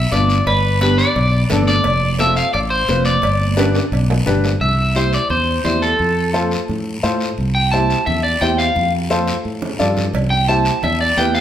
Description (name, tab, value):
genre	latin, cumbia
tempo	174 BPM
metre	4/4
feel	straight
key	C major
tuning	A4 = 438 Hz
part	electric guitar at the edge of break-up	melody	0.0-11.4 s	A4 to A5	-18 LUFS	equal	spring reverb
part	fingered electric bass	bass	0.0-11.4 s	F1 to A2	-18 LUFS	equal	none
part	warm upright piano	accompaniment	0.1-11.4 s	B3 to D5	-22 LUFS	left 3 dB	none
part	congas	percussion	0.1-11.3 s	none	-27 LUFS	right 5 dB	none
part	cowbell and timbales	percussion	0.1-4.5, 10.1-11.0 s	none	-27 LUFS	right 4 dB	none
part	guiro	percussion	0.1-11.4 s	none	-29 LUFS	left 3 dB	none
room	moderate large studio reverb, RT60 1.2 s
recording	band playing live in one room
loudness	-14 LUFS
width	side -10 dB against mid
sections	0.0-4.6 A section; 4.6-11.4 B section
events	drum fill 3.6-4.6, 8.8-10.1; clean electric guitar solo 4.6-11.4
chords	0.0 G; 1.9 F; 3.2 G; 4.6 C; 6.0 F; 7.4 C; 8.8 F; 10.1 C